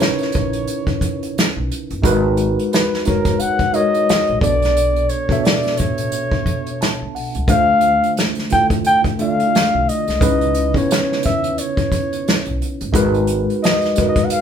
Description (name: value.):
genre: R&B, neo-soul.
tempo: 88 BPM.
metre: 4/4.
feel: swing 58% on 16ths.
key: unclear.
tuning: A4 = 440 Hz.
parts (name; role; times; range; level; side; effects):
breathy flugelhorn; melody; 0.0-14.4 s; Bb4 to G5; -19 LUFS; left 1 dB; none.
mellow tine electric piano; accompaniment; 0.0-14.4 s; B2 to A5; -20 LUFS; right 1 dB; medium stereo tremolo.
unplugged drum kit; drums; 0.0-14.4 s; hi-hat, kick drum, snare drum; -20 LUFS; equal; none.
upright bass; bass; 0.4-14.3 s; Gb1 to Eb2; -24 LUFS; equal; none.
room: moderate studio reverb, RT60 0.6 s.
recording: band playing live in one room.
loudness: -15 LUFS.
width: side -8 dB against mid.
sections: 0.0-14.4 A section.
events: tine electric piano fill 6.5-7.5.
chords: 0.0 Dbm9; 2.0 Abm9; 4.4 Bm9; 7.5 Dm9; 10.2 Dbm9; 12.9 Abm9.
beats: 0.66 1.35 | 2.03 2.71 3.39 4.07 | 4.75 5.44 6.12 6.80 | 7.48 8.16 8.85 9.53 | 10.21 10.89 11.57 12.26 | 12.94 13.62 14.30.